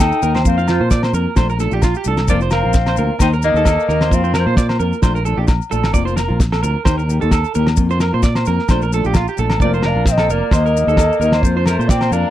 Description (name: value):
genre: highlife guitar band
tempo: 131 BPM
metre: 4/4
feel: swing 55% on 16ths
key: F mixolydian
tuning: A4 = 440 Hz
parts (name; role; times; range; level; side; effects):
- reedy bansuri; melody; 0.0-4.8, 9.6-12.3 s; Bb4 to G5; -19 LUFS; left 1 dB; none
- clear alto saxophone; second line; 0.0-4.8, 9.6-12.3 s; F3 to Eb4; -25 LUFS; left 9 dB; none
- nylon-string guitar; accompaniment; 0.0-12.3 s; Eb3 to G4; -24 LUFS; left 6 dB; none
- clean electric guitar; arpeggios; 0.0-12.3 s; F4 to F5; -22 LUFS; right 9 dB; lush chorus, slapback echo
- fingered electric bass; bass; 0.0-12.2 s; F1 to Bb2; -18 LUFS; equal; none
- cloth-damped thuddy drum kit; drums; 0.0-12.1 s; kick drum, snare drum; -16 LUFS; equal; none
- agogo bells; percussion; 0.0-12.1 s; none; -27 LUFS; left 8 dB; none
- maracas; percussion; 0.1-12.2 s; none; -32 LUFS; left 24 dB; none
room: little or no reverb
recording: dry, close 1970s-style studio recording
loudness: -13 LUFS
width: side -13 dB against mid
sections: 0.0-12.3 A section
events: none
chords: 0.5 Fsus4; 1.4 Bbmaj7; 2.3 Fsus4; 3.2 Eb; 4.1 Fsus4; 5.0 Bbmaj7; 5.9 Fsus4; 6.9 Eb; 7.8 Fsus4; 8.7 Bbmaj7; 9.6 Fsus4; 10.5 Eb; 11.4 Fsus4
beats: 0.00 | 0.46 0.91 1.37 1.83 | 2.29 2.74 3.20 3.66 | 4.11 4.57 5.03 5.49 | 5.94 6.40 6.86 7.32 | 7.77 8.23 8.69 9.15 | 9.61 10.06 10.52 10.98 | 11.44 11.89